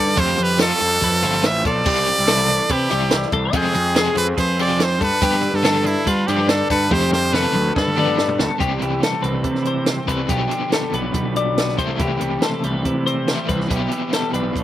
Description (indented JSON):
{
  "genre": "math rock and midwest emo",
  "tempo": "142 BPM",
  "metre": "4/4",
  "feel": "straight",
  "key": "C major",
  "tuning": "A4 = 445 Hz",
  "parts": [
    { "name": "brilliant trumpet", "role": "melody", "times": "0.0-8.4 s", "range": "E4 to E5", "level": "-20 LUFS", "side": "right 2 dB", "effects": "none" },
    { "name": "twelve-string electric guitar", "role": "accompaniment", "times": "0.0-14.6 s", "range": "E2 to Ab4", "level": "-28 LUFS", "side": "right 7 dB", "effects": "slapback echo" },
    { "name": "twelve-string electric guitar", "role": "arpeggios", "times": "0.0-14.6 s", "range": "G4 to G5", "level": "-24 LUFS", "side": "left 6 dB", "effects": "slapback echo" },
    { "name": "fuzz picked electric bass", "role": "bass", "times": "0.0-14.6 s", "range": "G1 to G3", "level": "-22 LUFS", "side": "equal", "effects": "overdrive" },
    { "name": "compact cocktail drum kit", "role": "drums", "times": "0.1-14.6 s", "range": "crash cymbal, hi-hat, kick drum, snare drum, toms", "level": "-23 LUFS", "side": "right 1 dB", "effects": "none" },
    { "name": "crunchy overdriven guitar", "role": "riff", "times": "0.2-14.6 s", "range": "B2 to A4", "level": "-24 LUFS", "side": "left 1 dB", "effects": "tremolo" }
  ],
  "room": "little or no reverb",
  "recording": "recorded outdoors, with no room sound",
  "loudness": "-16 LUFS",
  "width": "side -12 dB against mid",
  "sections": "0.0-8.6 A section; 8.6-14.6 B section",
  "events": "drum fill 6.9-8.6",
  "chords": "0.2 Fmaj9; 1.9 C69; 3.5 Fmadd9; 5.0 G9; 6.9 Fmaj9; 7.8 G9; 8.6 C6; 10.3 G7/B; 11.8 Am7/C; 13.7 Em7/B"
}